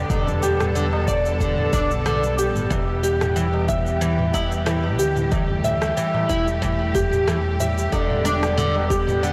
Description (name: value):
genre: organic downtempo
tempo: 92 BPM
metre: 4/4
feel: swing 54% on 16ths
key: E minor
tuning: A4 = 441 Hz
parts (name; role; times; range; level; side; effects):
- rich symphonic string section; sustained chords; 0.0-9.3 s; D3 to A4; -29 LUFS; equal; sidechain pumping
- mellow fretless electric bass; bass; 0.0-9.3 s; E1 to D2; -27 LUFS; equal; none
- oud; arpeggios; 0.1-9.3 s; D3 to E5; -25 LUFS; equal; delay
- afro-pop drum kit; drums; 0.1-9.3 s; rim click, shaker, toms; -32 LUFS; equal; soft clipping on snare
- electronic kick drum; drums; 0.1-9.0 s; none; -28 LUFS; equal; none
- tabla; percussion; 0.1-9.2 s; none; -37 LUFS; equal; none
room: moderate concert hall reverb, RT60 2.3 s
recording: blown-out, overdriven recording, overdrive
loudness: -21 LUFS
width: mono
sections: 0.0-9.3 A section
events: none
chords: 0.0 Em7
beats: | 0.10 0.75 1.41 2.06 | 2.71 3.36 4.01 4.67 | 5.32 5.97 6.62 7.28 | 7.93 8.58 9.23